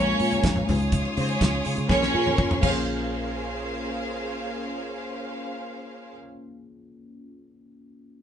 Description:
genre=disco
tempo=123 BPM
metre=4/4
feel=straight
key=Bb minor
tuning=A4 = 441 Hz
part: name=warm symphonic violin section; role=second line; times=0.0-6.1 s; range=C4 to F5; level=-29 LUFS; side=right 1 dB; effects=none
part: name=mellow tine electric piano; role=accompaniment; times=0.0-8.2 s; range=Ab3 to Db5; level=-31 LUFS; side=left 3 dB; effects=overdrive, phaser
part: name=clear studio string section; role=sustained chords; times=0.0-6.1 s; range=Ab3 to Eb6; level=-32 LUFS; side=right 1 dB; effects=none
part: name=fingered electric bass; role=bass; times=0.0-6.1 s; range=Bb1 to Db3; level=-29 LUFS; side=right 1 dB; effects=none
part: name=congas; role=percussion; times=0.1-3.1 s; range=none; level=-33 LUFS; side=left 2 dB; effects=none
part: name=damped 70s drum kit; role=drums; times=0.2-2.7 s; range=crash cymbal, hi-hat, kick drum, snare drum, toms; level=-26 LUFS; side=right 1 dB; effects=none
room=wet studio reverb, RT60 0.6 s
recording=band playing live in one room, nothing above 10.7 kHz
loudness=-23 LUFS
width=side -9 dB against mid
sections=0.0-2.9 A section; 2.9-6.8 B section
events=drum fill 1.9-2.9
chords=0.0 Bbm7; 0.7 Dbmaj9; 1.9 Bbm9

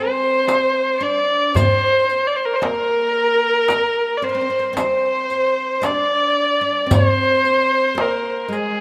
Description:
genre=Turkish makam ensemble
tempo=112 BPM (eighths)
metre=10/8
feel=straight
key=unclear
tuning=A4 = 443 Hz
part: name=rich kamancheh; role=melody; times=0.0-8.8 s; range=Ab4 to D5-26c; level=-20 LUFS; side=equal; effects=none
part: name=dark chamber violin section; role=second line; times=0.0-8.8 s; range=Ab4 to D5-30c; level=-30 LUFS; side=equal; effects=none
part: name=oud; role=second line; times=0.0-8.8 s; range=Ab3 to D4-30c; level=-29 LUFS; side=equal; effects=none
part: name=darbuka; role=percussion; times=0.5-8.6 s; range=none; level=-23 LUFS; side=equal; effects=none
part: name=frame drum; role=percussion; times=0.5-8.2 s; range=none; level=-31 LUFS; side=equal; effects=none
part: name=riq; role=percussion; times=0.5-8.7 s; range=none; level=-34 LUFS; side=equal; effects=none
room=wet plate reverb, RT60 3.0 s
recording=rough home demo mix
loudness=-18 LUFS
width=mono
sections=0.0-8.8 A section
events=none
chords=none

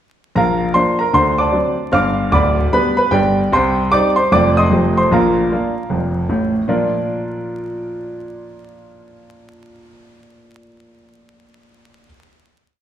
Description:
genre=jazz, stride piano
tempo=151 BPM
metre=4/4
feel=swing 64% on 8ths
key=Bb major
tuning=A4 = 440 Hz
part: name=clear concert grand piano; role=solo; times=0.4-12.1 s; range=D1 to F6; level=-14 LUFS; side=equal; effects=none
room=wet recital hall reverb, RT60 1.7 s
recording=recorded in a church or concert hall, vinyl crackle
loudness=-14 LUFS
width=side -10 dB against mid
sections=0.3-6.7 A section; 6.7-9.8 final chord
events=none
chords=0.3 Bb; 1.1 D7; 1.9 G7; 3.5 Cm; 4.3 F7; 4.7 F9; 5.1 Bb

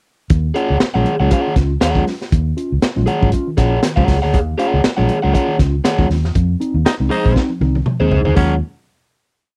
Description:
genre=funk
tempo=119 BPM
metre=4/4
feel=swing 56% on 16ths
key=Eb dorian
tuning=A4 = 442 Hz
part: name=mellow tine electric piano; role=stabs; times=0.3-8.6 s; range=Eb3 to F4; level=-24 LUFS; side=equal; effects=tube saturation
part: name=vintage muted fingered electric bass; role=bass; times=0.3-8.6 s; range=Ab1 to F2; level=-20 LUFS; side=equal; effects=none
part: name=crunchy breakbeat drum kit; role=drums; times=0.3-8.5 s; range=crash cymbal, hi-hat, kick drum, snare drum, toms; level=-19 LUFS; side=equal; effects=none
part: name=crunchy overdriven guitar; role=accompaniment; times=0.5-8.5 s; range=Eb4 to Gb5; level=-21 LUFS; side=equal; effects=none
part: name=breathy baritone saxophone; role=second line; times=6.9-8.5 s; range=Db4 to Eb4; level=-25 LUFS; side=equal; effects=none
room=little or no reverb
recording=dry, close 1970s-style studio recording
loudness=-16 LUFS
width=mono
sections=0.3-8.4 A section; 8.4-9.6 final chord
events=band accent 6.4-8.4; drum fill 7.4-8.4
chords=0.3 Ebm11; 6.4 Fm7; 8.4 Ebm11

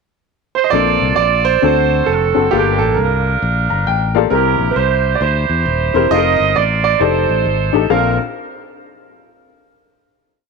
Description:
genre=uptempo gospel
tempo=134 BPM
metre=4/4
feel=swing 64% on 8ths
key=Bb major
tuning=A4 = 440 Hz
part: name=bright saxophone section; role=melody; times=0.6-8.2 s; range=Bb3 to Eb5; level=-19 LUFS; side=right 8 dB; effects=none
part: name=clear concert grand piano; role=melody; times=0.6-8.2 s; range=G4 to F5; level=-17 LUFS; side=right 12 dB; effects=none
part: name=warm upright piano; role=accompaniment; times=0.7-8.2 s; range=Bb1 to Bb5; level=-18 LUFS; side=left 14 dB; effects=none
part: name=fingered electric bass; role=bass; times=0.7-8.2 s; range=Eb1 to E2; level=-19 LUFS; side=left 2 dB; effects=none
room=moderate plate reverb, RT60 2.8 s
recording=1960s-style stereo with parts hard left and right, tape saturation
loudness=-12 LUFS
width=side -4 dB against mid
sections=0.0-0.7 pickup bar; 0.7-7.9 verse; 7.9-9.7 final chord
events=upright piano fill 3.4-4.3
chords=0.0 N.C.; 0.7 Bbmaj9; 1.6 D7; 2.5 Gm9; 4.3 C7; 6.1 F7sus4; 7.0 F13; 7.9 Bbmaj9

